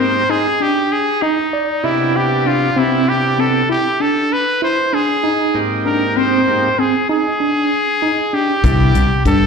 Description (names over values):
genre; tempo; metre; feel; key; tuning
progressive instrumental, band music in an uneven meter; 194 BPM (eighths); 11/8; straight; unclear; A4 = 440 Hz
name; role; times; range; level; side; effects
brilliant trumpet; melody; 0.0-9.5 s; Eb4 to C5; -17 LUFS; equal; slapback echo
overdriven tonewheel organ; accompaniment; 0.0-9.1 s; Ab2 to G4; -19 LUFS; equal; slow rotary speaker, slapback echo
tine electric piano; arpeggios; 0.0-9.4 s; C4 to D5; -18 LUFS; right 1 dB; medium stereo tremolo, slapback echo
fingered electric bass; bass; 8.6-9.5 s; C2 to G2; -13 LUFS; left 2 dB; none
tight funk drum kit; drums; 8.6-9.4 s; hi-hat, kick drum; -17 LUFS; left 1 dB; none
room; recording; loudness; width
light reverb; live gig heard through the venue's PA, recital hall reverb; -13 LUFS; side -5 dB against mid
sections
0.0-9.5 A section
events
none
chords
0.0 Abmaj7; 1.8 Cmaj7; 5.2 Abmaj7; 8.6 Cmaj7